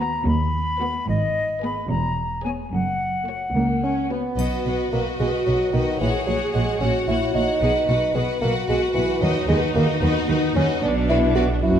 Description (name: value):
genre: cinematic, playful, whimsical film cue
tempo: 74 BPM (dotted quarters)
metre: 6/8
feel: straight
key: B major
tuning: A4 = 440 Hz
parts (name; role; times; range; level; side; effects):
- rich chamber violin section; melody; 0.0-11.4 s; B4 to F#5; -33 LUFS; left 5 dB; none
- rich chamber violin section; second line; 0.0-11.4 s; F#4 to C#5; -29 LUFS; left 2 dB; none
- silver concert flute; second line; 0.0-4.1 s; D#5 to B5; -25 LUFS; left 2 dB; none
- rich chamber viola section; accompaniment; 0.0-11.8 s; A#3 to G#4; -26 LUFS; equal; none
- rich chamber double bass section; bass; 0.0-11.8 s; E1 to D#2; -27 LUFS; right 1 dB; none
- rich symphonic cello section; bass; 0.0-11.8 s; C#2 to D#3; -25 LUFS; right 1 dB; none
- mellow bassoon; accompaniment; 3.5-11.8 s; D#3 to F#4; -24 LUFS; right 1 dB; none
- triangle; percussion; 4.4-5.4 s; none; -44 LUFS; left 4 dB; none
room: wet scoring stage reverb, RT60 1.5 s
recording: dark, warm production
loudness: -19 LUFS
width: side -9 dB against mid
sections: 0.0-4.4 A section; 4.4-11.8 B section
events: none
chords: 0.0 B/D#; 1.1 G#m; 1.9 E6; 2.7 F#; 4.4 B; 6.0 F#/A#; 7.6 B; 9.2 B/D#; 10.8 Bm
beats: 0.26 | 1.07 1.89 | 2.72 3.55 | 4.38 5.20 | 6.00 6.81 | 7.62 8.42 | 9.22 10.02 | 10.83 11.63